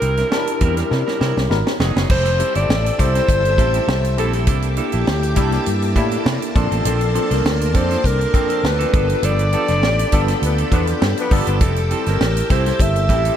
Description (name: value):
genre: polished 1980s jazz-funk pop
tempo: 101 BPM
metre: 4/4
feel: swing 54% on 16ths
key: F major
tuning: A4 = 442 Hz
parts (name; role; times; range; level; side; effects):
- mellow alto saxophone; melody; 0.0-13.4 s; G4 to E5; -22 LUFS; left 1 dB; tape echo
- tine electric piano; accompaniment; 0.0-13.4 s; Bb3 to Cb6; -24 LUFS; left 2 dB; overdrive, fast stereo tremolo, lush chorus
- semi-hollow electric guitar; riff; 0.0-13.4 s; F3 to Bb4; -28 LUFS; right 7 dB; wide subtle chorus
- fretless electric bass; bass; 0.0-13.3 s; F1 to C3; -20 LUFS; equal; none
- tight funk drum kit; drums; 0.0-13.4 s; crash cymbal, hi-hat, kick drum, snare drum; -20 LUFS; equal; none
- string machine, violins; sustained chords; 2.1-13.4 s; Bb3 to E6; -28 LUFS; equal; ensemble chorus
- mellow horn section; second line; 10.4-11.6 s; F3 to B4; -28 LUFS; left 4 dB; none
room: moderate plate reverb, RT60 2.9 s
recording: dreamy mix soaked in reverb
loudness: -15 LUFS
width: side -10 dB against mid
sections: 0.0-2.1 A section; 2.1-13.4 B section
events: drum fill 0.9-2.1; tine electric piano fill 1.2-2.1; band accent 9.2-11.6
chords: 0.0 C7; 1.5 Abm7; 2.1 Fmaj9; 4.5 C13; 6.6 Bbmaj9; 8.9 G9; 11.6 Fmaj9